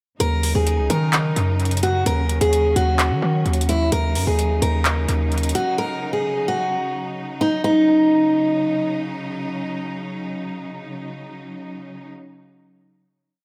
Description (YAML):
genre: hip hop, trap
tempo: 129 BPM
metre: 4/4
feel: half-time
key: Eb minor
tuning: A4 = 440 Hz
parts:
  - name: picked steel-string acoustic guitar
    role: melody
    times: 0.2-9.0 s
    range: Eb4 to Bb4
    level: -23 LUFS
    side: equal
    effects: dub echo
  - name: bright symphonic string section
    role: sustained chords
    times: 0.2-12.1 s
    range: Db3 to Eb4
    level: -31 LUFS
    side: equal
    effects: none
  - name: hard-hitting 808-style bass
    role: bass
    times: 0.2-5.5 s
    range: Db2 to Eb3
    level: -22 LUFS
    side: equal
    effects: none
  - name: booming analog drum machine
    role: drums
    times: 0.2-5.7 s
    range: handclaps, hi-hat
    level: -27 LUFS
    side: equal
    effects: dub echo
room: light reverb, small room ambience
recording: echo-heavy mix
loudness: -20 LUFS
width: mono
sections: 0.2-7.6 hook; 7.6-11.4 final chord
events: none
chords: 0.2 Ebm7